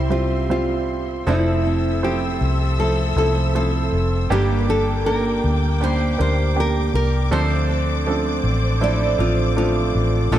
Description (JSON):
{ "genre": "pop ballad", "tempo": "80 BPM", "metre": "4/4", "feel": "straight", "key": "F major", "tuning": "A4 = 441 Hz", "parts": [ { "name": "nylon-string guitar", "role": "melody", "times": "0.0-10.4 s", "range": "E4 to D5", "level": "-24 LUFS", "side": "right 1 dB", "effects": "ping-pong delay" }, { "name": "warm baby grand piano", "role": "accompaniment", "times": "0.0-10.4 s", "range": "G2 to E5", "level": "-23 LUFS", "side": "right 4 dB", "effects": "none" }, { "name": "rich studio string section", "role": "sustained chords", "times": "0.0-10.4 s", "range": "Bb3 to E6", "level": "-29 LUFS", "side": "left 2 dB", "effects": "none" }, { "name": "fingerpicked steel-string acoustic guitar", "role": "arpeggios", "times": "0.0-10.4 s", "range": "G2 to A4", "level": "-30 LUFS", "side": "left 2 dB", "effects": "none" }, { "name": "vintage muted fingered electric bass", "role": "bass", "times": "0.0-10.4 s", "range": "F1 to D2", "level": "-21 LUFS", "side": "left 1 dB", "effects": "none" } ], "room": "light reverb, small room ambience", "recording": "dark, warm production", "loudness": "-17 LUFS", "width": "side -12 dB against mid", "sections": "0.0-1.3 A section; 1.3-10.4 B section", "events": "none", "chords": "0.0 C; 1.3 Fmaj7; 4.3 Gm; 7.3 Dm7", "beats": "0.49 | 1.27 2.03 2.79 3.55 | 4.31 5.06 5.82 6.57 | 7.32 8.07 8.82 9.57 | 10.32" }